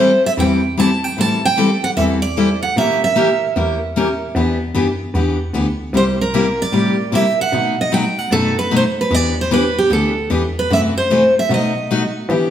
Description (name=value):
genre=acoustic string swing (jazz manouche)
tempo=151 BPM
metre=4/4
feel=swing 64% on 8ths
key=E minor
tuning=A4 = 439 Hz
part: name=picked steel-string acoustic guitar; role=melody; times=0.0-12.1 s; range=G4 to A5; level=-17 LUFS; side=right 2 dB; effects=none
part: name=picked steel-string acoustic guitar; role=accompaniment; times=0.0-12.5 s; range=B2 to A#4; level=-18 LUFS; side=left 2 dB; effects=none
part: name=warm cello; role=bass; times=0.0-12.5 s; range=C2 to E3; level=-22 LUFS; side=equal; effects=none
room=wet stone room reverb, RT60 1.3 s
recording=band playing live in one room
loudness=-14 LUFS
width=side -10 dB against mid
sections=0.0-12.3 A section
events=none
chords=0.0 Am7; 2.8 A#dim7; 4.3 Em7; 5.9 C7; 7.5 B7; 9.1 Em7; 10.7 F#m7b5; 11.5 B7